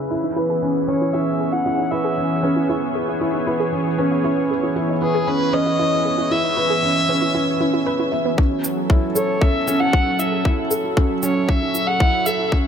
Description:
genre	piano and strings electronica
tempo	116 BPM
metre	4/4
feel	straight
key	unclear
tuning	A4 = 440 Hz
part	lush unison pad	sustained chords	0.0-12.7 s	C#3 to E5	-24 LUFS	equal	chorus, sidechain pumping
part	warbly dusty pluck	arpeggios	0.0-12.6 s	B3 to B4	-28 LUFS	right 2 dB	chorus, sidechain pumping, tape echo
part	felt-muted upright piano	riff	0.0-12.7 s	C#4 to E5	-22 LUFS	right 1 dB	tape echo
part	dark violin	melody	0.9-12.5 s	G#4 to F#5	-22 LUFS	left 1 dB	low-pass filter
part	electronic kick drum	drums	8.4-12.6 s	none	-17 LUFS	left 1 dB	overdrive
part	shaker	drums	8.6-12.4 s	none	-26 LUFS	right 2 dB	low-pass filter on perc
room	moderate huge ambient reverb, RT60 4.9 s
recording	low-pass filter, faint mains hum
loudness	-17 LUFS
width	side -8 dB against mid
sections	0.0-8.4 A section; 8.4-12.7 B section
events	filter sweep on felt piano 0.0-8.4; filter sweep on synth arpeggio sound 0.0-8.4; filter sweep 0.0-8.4, 8.4-12.7; build-up 8.4-12.7; filter sweep on violin 8.4-12.7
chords	0.1 E6; 8.4 F#m7

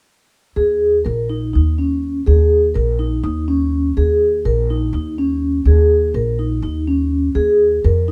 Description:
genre	contemporary instrumental, contemporary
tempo	248 BPM (eighths)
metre	7/8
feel	straight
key	unclear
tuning	A4 = 440 Hz
part	vibraphone with soft mallets	arpeggios	0.6-8.1 s	Db4 to Bb4	-19 LUFS	equal	none
part	upright bass	bass	0.6-8.1 s	Bb1 to F2	-20 LUFS	equal	none
room	moderate booth ambience, RT60 0.2 s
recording	heard from further back in the room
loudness	-17 LUFS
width	mono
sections	0.6-8.1 A section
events	none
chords	0.6 Eb5; 7.4 Bb7(no3)/Eb

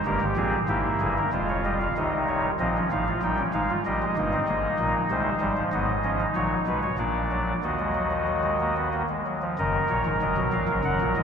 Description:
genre	classical, baroque-style 4-part fugue for pipe organ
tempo	95 BPM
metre	3/4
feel	straight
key	Eb minor from 5.7 s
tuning	A4 = 440 Hz
part	chamber organ, soft reed	solo	0.0-11.2 s	F1 to G5	-23 LUFS	equal	none
room	wet cathedral reverb, RT60 5.9 s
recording	recorded in a church or concert hall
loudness	-23 LUFS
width	side -7 dB against mid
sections	0.0-2.0 A section; 2.0-9.6 B section; 9.6-11.2 C section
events	none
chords	0.1 C7/G; 1.3 Fm; 2.0 F7/C; 3.2 Bbm; 3.9 Eb; 5.1 Ab/C; 5.7 Abm; 7.0 Bb; 7.6 Ebm; 9.6 Ebm/Gb

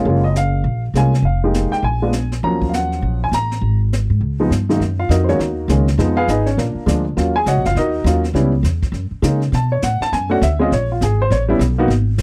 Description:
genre	jazz piano trio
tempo	203 BPM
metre	4/4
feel	swing 62% on 8ths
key	Eb minor, F# major from 4.8 s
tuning	A4 = 442 Hz
part	warm baby grand piano	melody	0.0-11.9 s	Gb2 to Bb5	-20 LUFS	equal	none
part	upright bass	bass	0.0-12.2 s	F1 to C#3	-20 LUFS	equal	none
part	jazz brush drum kit	drums	0.1-12.2 s	brushed snare drum, hi-hat, kick drum, snare drum	-28 LUFS	equal	none
room	little or no reverb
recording	dry, close 1970s-style studio recording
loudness	-17 LUFS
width	mono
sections	0.0-4.8 A section; 4.8-12.2 B section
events	none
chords	0.1 Gbmaj9; 1.2 Fm11; 1.8 Bb7(no3); 2.4 Ebm9; 3.6 N.C.; 4.2 Db5; 4.8 F#6; 6.0 Fm7b5; 6.6 A#7; 7.2 D#m7; 8.3 C#m7b5; 8.9 F#; 9.5 Bm7; 10.7 G#sus2; 11.3 Aadd9

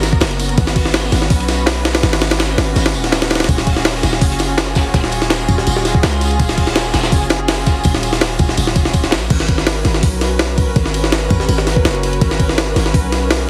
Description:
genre	drum and bass, jungle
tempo	165 BPM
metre	4/4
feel	straight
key	G# minor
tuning	A4 = 439 Hz
part	dark studio string section	sustained chords	0.0-13.5 s	B3 to B4	-24 LUFS	equal	vintage 12-bit sampler grit
part	warm 808-style bass	bass	0.0-13.5 s	D#1 to C#2	-21 LUFS	equal	none
part	breakbeat sampler-style drum kit	drums	0.0-13.4 s	crash cymbal, hi-hat, kick drum, ride cymbal, snare drum	-18 LUFS	equal	small room ambience
part	crunchy breakbeat drum kit	drums	0.0-9.2 s	hi-hat, snare drum, tambourine	-27 LUFS	equal	high-pass filter on hats, small room ambience, high-pass filter on snare, high-pass filter on perc, high-pass filter on room
room	light reverb, small room reverb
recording	heavily compressed radio sound, multiband compression, vinyl crackle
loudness	-15 LUFS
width	mono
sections	0.0-9.3 A section; 9.3-13.5 A section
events	drop 0.0-9.3, 9.3-13.5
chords	0.0 G#m11; 3.5 D#m11; 9.3 G#m11

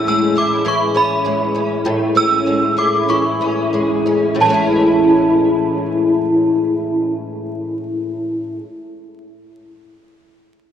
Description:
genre	dream pop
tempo	88-104 BPM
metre	4/4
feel	straight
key	A major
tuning	A4 = 443 Hz
part	synth chime	melody	0.0-8.6 s	A5 to E6	-19 LUFS	right 2 dB	ensemble chorus, phaser, analog delay
part	picked twelve-string acoustic guitar	arpeggios	0.0-8.7 s	A2 to E4	-15 LUFS	left 1 dB	ensemble chorus, analog delay
room	wet plate reverb, RT60 3.7 s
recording	dark, warm production, vinyl crackle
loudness	-14 LUFS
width	side -9 dB against mid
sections	0.0-4.4 A section; 4.4-7.1 B section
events	slowing down 0.0-4.4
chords	0.0 Amaj7

